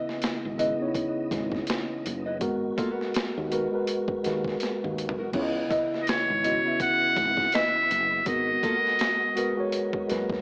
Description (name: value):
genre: R&B, neo-soul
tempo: 82 BPM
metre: 4/4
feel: swing 58% on 16ths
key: C# dorian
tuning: A4 = 440 Hz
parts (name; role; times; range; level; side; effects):
- nylon-string guitar; second line; 0.0-9.5 s; B3 to D#5; -35 LUFS; equal; tape echo
- mellow tine electric piano; accompaniment; 0.0-10.4 s; C#3 to E5; -32 LUFS; equal; none
- tonewheel organ; sustained chords; 0.0-10.4 s; B2 to D#5; -42 LUFS; equal; slow rotary speaker, overdrive, chorus vibrato
- boom bap sampler-style drum kit; drums; 0.1-10.4 s; crash cymbal, hi-hat, kick drum, snare drum, toms; -35 LUFS; equal; overdrive
- woody fretless electric bass; bass; 0.2-10.4 s; F#1 to D#2; -37 LUFS; equal; none
- trumpet with metal mute; melody; 6.0-9.7 s; C#5 to F#5; -27 LUFS; equal; none
room: light reverb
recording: AM radio sound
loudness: -27 LUFS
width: mono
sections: 0.0-10.4 A section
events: drum fill 4.6-5.3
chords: 0.0 C#m9; 2.4 G#m9; 5.3 C#m9; 8.3 G#m9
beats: 0.21 0.94 1.68 | 2.41 3.14 3.87 4.60 | 5.33 6.07 6.80 7.53 | 8.26 8.99 9.72